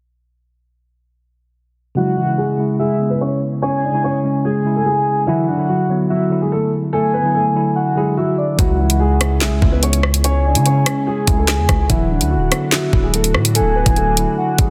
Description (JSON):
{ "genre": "hip hop, drill", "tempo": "145 BPM", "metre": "4/4", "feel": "half-time", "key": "C# phrygian", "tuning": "A4 = 440 Hz", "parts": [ { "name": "mellow tine electric piano", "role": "accompaniment", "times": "1.9-14.7 s", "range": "C#3 to E4", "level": "-23 LUFS", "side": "equal", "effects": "low-pass filter" }, { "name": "dark concert grand piano", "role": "melody", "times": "2.0-14.7 s", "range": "D3 to D5", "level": "-23 LUFS", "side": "equal", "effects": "low-pass filter" }, { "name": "soft octave-layered synth lead", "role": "second line", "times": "2.0-14.7 s", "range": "D5 to G#5", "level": "-24 LUFS", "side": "equal", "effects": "chorus, tremolo, digital delay" }, { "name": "glassy FM pad", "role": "sustained chords", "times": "8.8-14.7 s", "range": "C#3 to G#4", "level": "-32 LUFS", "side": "equal", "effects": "ensemble chorus, built-in reverb" }, { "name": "distorted 808-style bass", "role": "bass", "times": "8.6-14.7 s", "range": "D1 to C#3", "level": "-20 LUFS", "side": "equal", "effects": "distortion" }, { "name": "drill drum kit", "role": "drums", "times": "8.6-14.7 s", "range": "handclaps, hi-hat, kick drum, rim click, snare drum", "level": "-19 LUFS", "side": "equal", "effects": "overdrive" } ], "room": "light reverb, digital ambience", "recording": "dense, heavily limited modern master", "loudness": "-17 LUFS", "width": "mono", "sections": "2.0-8.6 A section; 8.6-14.7 B section", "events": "filter sweep 2.0-8.6", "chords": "2.0 C#m; 5.3 Dadd9; 8.6 C#m; 11.9 Dadd9" }